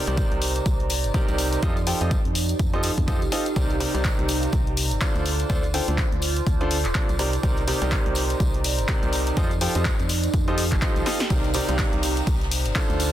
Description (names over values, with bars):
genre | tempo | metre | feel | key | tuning
piano house | 124 BPM | 4/4 | swing 58% on 16ths | C dorian | A4 = 436 Hz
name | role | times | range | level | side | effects
bright concert grand piano | riff | 0.0-13.1 s | C3 to G5 | -28 LUFS | right 1 dB | sidechain pumping, digital delay
warbly tape-like pad | texture | 0.0-13.1 s | Eb4 to Bb5 | -31 LUFS | right 2 dB | chorus, built-in reverb, phaser, sidechain pumping
organ-like FM bass | bass | 0.1-13.1 s | D1 to F2 | -26 LUFS | equal | sidechain pumping
punchy analog drum machine | drums | 0.1-13.1 s | handclaps, hi-hat, snare drum | -29 LUFS | left 2 dB | none
tambourine | percussion | 0.1-13.1 s | none | -37 LUFS | right 2 dB | none
electronic kick drum | drums | 0.2-12.9 s | none | -24 LUFS | equal | none
jazz brush drum kit | drums | 11.3-13.1 s | ride cymbal, snare drum | -38 LUFS | left 5 dB | high-pass filter on cymbals, high-pass filter on snare, high-pass filter on room
room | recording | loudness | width
small room ambience | dense, heavily limited modern master | -20 LUFS | side -12 dB against mid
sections
0.0-13.1 A section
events
drum fill 11.1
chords
0.0 Cm9; 1.6 F9; 3.6 Cm9; 5.3 Dm7; 7.2 Cm9; 9.4 F9; 11.3 Cm9